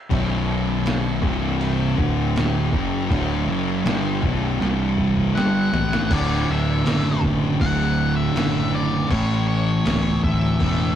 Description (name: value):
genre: stoner and doom metal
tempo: 80 BPM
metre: 4/4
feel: straight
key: B minor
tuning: A4 = 440 Hz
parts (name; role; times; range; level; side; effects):
- thick fuzz guitar; riff; 0.1-11.0 s; B1 to A3; -23 LUFS; left 5 dB; distortion
- thick fuzz guitar; riff; 0.1-11.0 s; B1 to A3; -24 LUFS; right 5 dB; distortion
- fuzz picked electric bass; bass; 0.1-11.0 s; B0 to A1; -26 LUFS; equal; overdrive
- lo-fi sampler-style drum kit; drums; 0.1-10.8 s; crash cymbal, hi-hat, kick drum, snare drum, toms; -26 LUFS; equal; overdrive
- octave-fuzz lead guitar; melody; 5.4-11.0 s; C#5 to F#5; -27 LUFS; left 1 dB; distortion, tape echo
room: light reverb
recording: rough rehearsal-room recording, tube saturation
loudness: -18 LUFS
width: side -10 dB against mid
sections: 0.0-6.1 A section; 6.1-11.0 B section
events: drum fill 4.6-6.1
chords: 0.0 B5; 1.2 C5; 2.0 D5; 2.7 Bm; 4.6 C5; 5.4 Em11/G; 6.1 D; 9.1 A